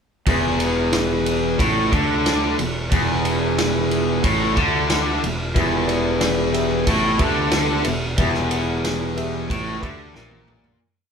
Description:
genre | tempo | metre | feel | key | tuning
classic rock | 91 BPM | 4/4 | straight | E minor | A4 = 439 Hz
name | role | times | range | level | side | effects
tonewheel organ | sustained chords | 0.3-10.8 s | E3 to B4 | -36 LUFS | equal | none
distorted electric guitar | riff | 0.3-10.8 s | E2 to D3 | -23 LUFS | left 5 dB | distortion
raw garage guitar | riff | 0.3-10.8 s | E2 to D3 | -23 LUFS | right 4 dB | overdrive
fuzz picked electric bass | bass | 0.3-10.8 s | E1 to D2 | -26 LUFS | equal | overdrive
vintage drum kit | drums | 0.3-10.8 s | kick drum, ride cymbal, snare drum, toms | -23 LUFS | equal | none
warm upright piano | accompaniment | 5.5-10.8 s | G4 to B5 | -30 LUFS | left 1 dB | none
room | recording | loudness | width
moderate stone room reverb, RT60 1.2 s | band playing live in one room | -18 LUFS | side -6 dB against mid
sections
0.3-10.8 riff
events
fade-out 8.2-10.8; upright piano fill 9.5-10.8; drum fill 10.2-10.8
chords
0.3 Em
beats
| 0.27 0.93 1.59 2.25 | 2.91 3.57 4.23 4.89 | 5.55 6.21 6.87 7.53 | 8.18 8.84 9.50 10.15

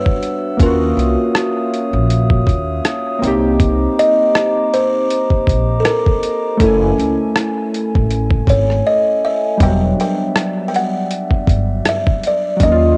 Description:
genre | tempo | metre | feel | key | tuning
lo-fi hip hop | 80 BPM | 4/4 | swing 56% on 16ths | unclear | A4 = 441 Hz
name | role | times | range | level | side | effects
buzzing kalimba | melody | 0.0-13.0 s | A4 to G5 | -20 LUFS | equal | cassette tape, tape echo
warm analog keys | accompaniment | 0.0-13.0 s | F#3 to G#5 | -22 LUFS | equal | chorus, cassette tape
glass harmonica | sustained chords | 0.0-13.0 s | D4 to E6 | -27 LUFS | equal | none
lo-fi sampler-style drum kit | drums | 0.1-12.8 s | hi-hat, kick drum, rim click | -19 LUFS | equal | overdrive, cassette tape
upright bass | bass | 0.6-12.9 s | E1 to D#2 | -20 LUFS | equal | none
room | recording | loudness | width
light reverb, small room ambience | home recording on cassette | -16 LUFS | mono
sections
0.0-13.0 A section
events
drums muted 8.8-9.6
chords
0.0 Em9; 0.6 D#m9; 3.2 Cm9; 6.6 F#m9 (rootless); 9.6 Em9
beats
| 0.60 1.35 2.10 2.85 | 3.60 4.35 5.10 5.85 | 6.60 7.35 8.10 8.85 | 9.60 10.35 11.10 11.85 | 12.60

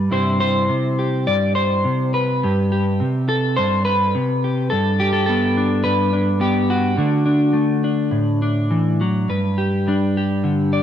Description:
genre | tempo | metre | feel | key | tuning
folk, solo fingerstyle acoustic guitar | 104 BPM | 4/4 | rubato | G major | A4 = 440 Hz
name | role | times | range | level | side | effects
clean electric guitar | solo | 0.0-10.8 s | G2 to D5 | -16 LUFS | equal | wide subtle chorus, cassette tape
room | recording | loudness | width
light reverb, digital ambience | home recording on cassette | -16 LUFS | side -9 dB against mid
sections
0.0-9.3 A section; 9.3-10.8 B section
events
none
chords
0.1 C/G; 4.7 Gadd9; 7.0 D; 9.3 G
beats
| 0.11 0.69 1.27 1.84 | 2.42 2.99 3.57 4.14 | 4.70 5.26 5.83 6.39 | 6.96 7.53 8.11 8.70 | 9.29 9.86 10.44

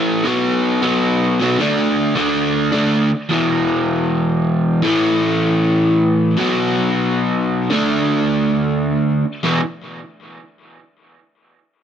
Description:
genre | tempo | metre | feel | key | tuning
punk | 156 BPM | 4/4 | straight | unclear | A4 = 439 Hz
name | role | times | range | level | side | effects
crunchy overdriven guitar | solo | 0.0-9.6 s | E2 to D4 | -15 LUFS | equal | tape echo
room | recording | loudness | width
light reverb | none | -15 LUFS | side -8 dB against mid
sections
0.0-3.3 A section; 3.3-9.4 B section; 9.4-11.0 C section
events
none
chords
0.3 B5; 1.6 D5; 3.3 E5; 4.8 A5; 6.4 B5; 7.7 D5; 9.4 E5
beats
| 0.26 0.64 1.02 1.40 | 1.78 2.16 2.54 2.93 | 3.31 3.69 4.07 4.46 | 4.84 5.22 5.61 5.99 | 6.38 6.76 7.14 7.53 | 7.91 8.29 8.68 9.06 | 9.45

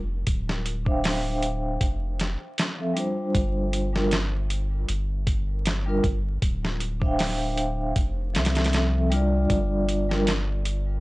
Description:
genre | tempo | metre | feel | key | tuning
trip hop | 78 BPM | 4/4 | swing 55% on 16ths | unclear | A4 = 440 Hz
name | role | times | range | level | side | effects
soft dub sub bass | bass | 0.0-11.0 s | D1 to C2 | -26 LUFS | equal | transformer saturation
boom bap sampler-style drum kit | drums | 0.3-10.9 s | hi-hat, kick drum, snare drum | -26 LUFS | equal | studio reverb
vibraphone with soft mallets | accompaniment | 0.9-10.2 s | F3 to G5 | -27 LUFS | equal | tremolo, vintage 12-bit sampler grit, low-pass filter, tape echo
room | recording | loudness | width
digital ambience | dry, gritty hardware recording, vinyl crackle, nothing above 10.6 kHz | -23 LUFS | side -20 dB against mid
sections
0.0-11.0 A section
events
none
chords
0.3 Dm11; 1.8 F5; 3.3 G7(no3); 6.4 Dm11; 8.0 Fmaj7; 9.5 G7(no3)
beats
| 0.27 1.04 1.81 2.58 | 3.35 4.11 4.88 5.65 | 6.42 7.19 7.96 8.73 | 9.50 10.27

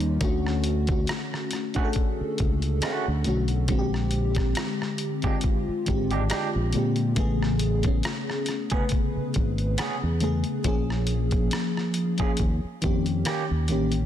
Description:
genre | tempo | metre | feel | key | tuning
R&B, neo-soul | 69 BPM | 4/4 | swing 55% on 16ths | unclear | A4 = 440 Hz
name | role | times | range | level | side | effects
FM electric piano with soft pad layer | accompaniment | 0.0-14.1 s | C3 to B4 | -27 LUFS | left 2 dB | chorus, tremolo
fingered electric bass | bass | 0.0-14.1 s | G#1 to A#2 | -26 LUFS | equal | none
dusty soul sampler-style drum kit | drums | 0.0-14.1 s | hi-hat, kick drum, rim click | -28 LUFS | equal | soft clipping on snare
electric guitar through a small old amp | second line | 1.8-13.4 s | G#3 to G#4 | -33 LUFS | right 5 dB | none
room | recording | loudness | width
light reverb | dense, heavily limited modern master | -23 LUFS | side -10 dB against mid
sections
0.0-14.1 A section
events
none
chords
0.2 Dmaj7; 3.7 A#13; 7.2 Amaj9; 10.6 A#m7; 12.4 D#7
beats
| 0.21 1.08 1.95 2.82 | 3.69 4.56 5.43 6.29 | 7.17 8.03 8.90 9.77 | 10.64 11.51 12.38 13.25

